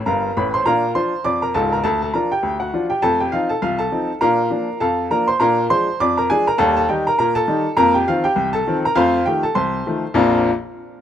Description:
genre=ragtime piano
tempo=101 BPM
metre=2/4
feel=swing 57% on 16ths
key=Bb major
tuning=A4 = 440 Hz
part: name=clear upright piano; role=solo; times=0.0-10.5 s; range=Db1 to D6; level=-16 LUFS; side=equal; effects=none
room=light reverb, small room ambience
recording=rough home demo mix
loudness=-16 LUFS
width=side -10 dB against mid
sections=0.0-10.2 A section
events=upright piano fill 0.0-0.7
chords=0.0 F; 0.7 Bb; 1.9 Bb/D; 3.0 F7; 4.2 Bb; 5.4 Bb7; 6.6 Eb; 7.8 F7sus4; 9.0 F7; 10.2 Bb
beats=0.07 | 0.66 1.26 | 1.85 2.44 | 3.04 3.63 | 4.22 4.82 | 5.41 6.00 | 6.59 7.18 | 7.78 8.37 | 8.96 9.56 | 10.15

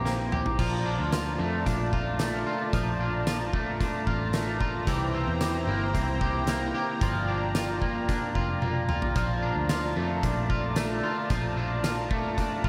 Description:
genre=dream pop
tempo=112 BPM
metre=4/4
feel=straight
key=unclear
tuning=A4 = 440 Hz
part: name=warm analog pad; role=sustained chords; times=0.0-12.7 s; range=E4 to Bb5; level=-35 LUFS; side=equal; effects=chorus
part: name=electric guitar at the edge of break-up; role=arpeggios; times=0.0-12.7 s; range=E3 to G4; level=-33 LUFS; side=equal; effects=analog chorus, tape echo
part: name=vintage muted picked electric bass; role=bass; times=0.0-12.7 s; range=F1 to F2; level=-34 LUFS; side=equal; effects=none
part: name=oversized low-tuned drum kit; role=drums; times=0.1-12.7 s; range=crash cymbal, hi-hat, kick drum, snare drum, tambourine, toms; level=-33 LUFS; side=equal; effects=tape echo
room=light reverb, small room ambience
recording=echo-heavy mix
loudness=-28 LUFS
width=mono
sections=0.6-12.7 A section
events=drum fill 0.1-0.6, 8.6-9.2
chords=0.0 C7; 0.6 Bbmaj7; 4.9 C7; 7.0 Gm7; 9.2 Bbmaj7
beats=0.05 | 0.59 1.12 1.66 2.20 | 2.73 3.27 3.80 4.34 | 4.88 5.41 5.95 6.48 | 7.02 7.55 8.09 8.62 | 9.16 9.70 10.23 10.77 | 11.30 11.84 12.38

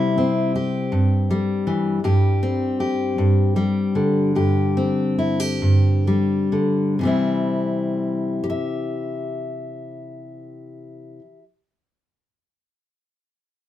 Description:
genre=folk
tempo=41-54 BPM (dotted quarters)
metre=6/8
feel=straight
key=C major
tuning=A4 = 439 Hz
part: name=fingerpicked steel-string acoustic guitar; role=accompaniment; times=0.0-11.4 s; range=G2 to E5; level=-19 LUFS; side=left 1 dB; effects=none
room=wet studio reverb, RT60 0.5 s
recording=minimal, uncompressed stereo recording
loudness=-18 LUFS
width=side -12 dB against mid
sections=0.0-7.0 A section; 7.0-9.9 B section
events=slowing down 2.0-7.0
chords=0.0 C; 2.0 Gsus4; 7.0 C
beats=0.91 | 2.03 3.16 | 4.34 5.61 | 6.99 8.44

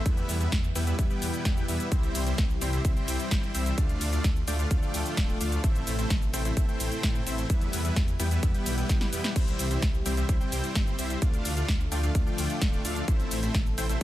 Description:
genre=EDM, festival progressive house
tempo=129 BPM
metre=4/4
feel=straight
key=C major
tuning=A4 = 440 Hz
part: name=lush unison pad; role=sustained chords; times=0.0-14.0 s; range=B2 to A4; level=-37 LUFS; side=left 2 dB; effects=chorus, sidechain pumping
part: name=dense compressed supersaw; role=riff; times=0.0-14.0 s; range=G3 to G5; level=-33 LUFS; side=equal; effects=sidechain pumping, tape echo
part: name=detuned saw bass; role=bass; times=0.1-14.0 s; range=D1 to A2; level=-31 LUFS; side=equal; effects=sidechain pumping
part: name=big-room dance drum kit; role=drums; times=0.1-14.0 s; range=cabasa, crash cymbal, hi-hat, ride cymbal, snare drum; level=-34 LUFS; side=equal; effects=small room ambience
part: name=electronic kick drum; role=drums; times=0.1-14.0 s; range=none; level=-26 LUFS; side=equal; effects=small room ambience
room=digital ambience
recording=none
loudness=-25 LUFS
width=side -14 dB against mid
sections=0.0-14.0 A section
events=drum fill 8.9-9.4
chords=0.1 Em; 1.9 C; 3.8 Dm; 5.6 Am; 7.5 Em; 9.4 C; 11.2 Dm; 13.1 Am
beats=| 0.06 0.52 0.99 1.45 | 1.92 2.38 2.85 3.31 | 3.78 4.24 4.71 5.17 | 5.64 6.10 6.57 7.03 | 7.50 7.96 8.43 8.89 | 9.36 9.82 10.29 10.75 | 11.22 11.69 12.15 12.62 | 13.08 13.54 14.01

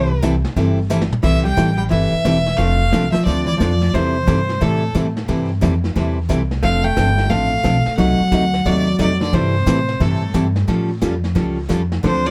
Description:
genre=country, western swing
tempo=178 BPM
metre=4/4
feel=swing 64% on 8ths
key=C major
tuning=A4 = 441 Hz
part: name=rich fiddle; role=melody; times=0.0-12.3 s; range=A4 to G5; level=-24 LUFS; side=equal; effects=none
part: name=picked steel-string acoustic guitar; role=accompaniment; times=0.0-12.3 s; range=C3 to A4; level=-23 LUFS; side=equal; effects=none
part: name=upright bass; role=bass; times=0.0-12.3 s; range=E1 to A2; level=-22 LUFS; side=equal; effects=none
part: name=vintage brush drum kit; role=drums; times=0.2-12.3 s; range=brushed snare drum, crash cymbal, hi-hat, kick drum, snare drum, toms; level=-27 LUFS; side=equal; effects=none
part: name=hollow-body jazz guitar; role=second line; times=1.2-12.3 s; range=A2 to A3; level=-24 LUFS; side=equal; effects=tape echo
room=light reverb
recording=none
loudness=-17 LUFS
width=mono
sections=0.0-1.2 A section; 1.2-12.3 B section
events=fiddle solo 0.0-1.2; drum fill 0.9-1.2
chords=0.0 C6; 2.6 F6; 3.9 C6; 6.6 F6; 8.0 F#dim7; 9.3 C6; 10.7 Aaug7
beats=0.23 0.56 0.90 | 1.24 1.57 1.91 2.25 | 2.58 2.92 3.26 3.60 | 3.93 4.27 4.61 4.94 | 5.28 5.62 5.96 6.29 | 6.63 6.97 7.30 7.64 | 7.98 8.32 8.66 8.99 | 9.33 9.67 10.01 10.35 | 10.68 11.02 11.36 11.70 | 12.03

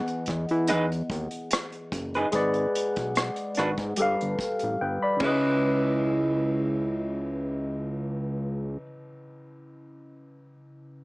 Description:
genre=R&B, neo-soul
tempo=73 BPM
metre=4/4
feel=swing 54% on 16ths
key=C# minor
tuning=A4 = 440 Hz
part: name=barky tine electric piano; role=accompaniment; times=0.0-11.0 s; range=C#3 to B5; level=-29 LUFS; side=left 1 dB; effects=overdrive, phaser
part: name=unplugged drum kit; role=drums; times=0.1-5.4 s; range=hi-hat, kick drum, ride cymbal, rim click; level=-33 LUFS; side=equal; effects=none
part: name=fat analog bass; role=bass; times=0.3-8.8 s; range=F#1 to E3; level=-30 LUFS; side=equal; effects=none
part: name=electric guitar through a small old amp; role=second line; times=0.7-8.9 s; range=C#4 to B4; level=-27 LUFS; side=right 2 dB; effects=wide subtle chorus
room=light reverb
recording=small speaker sound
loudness=-24 LUFS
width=side -22 dB against mid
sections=0.0-5.6 A section; 5.6-8.9 B section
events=drum fill 4.8-5.6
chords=0.0 Emaj7; 2.3 G#m7b5; 4.0 G9; 5.2 C#m7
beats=0.68 1.50 | 2.33 3.15 3.97 4.79 | 5.61 6.44 7.26 8.08

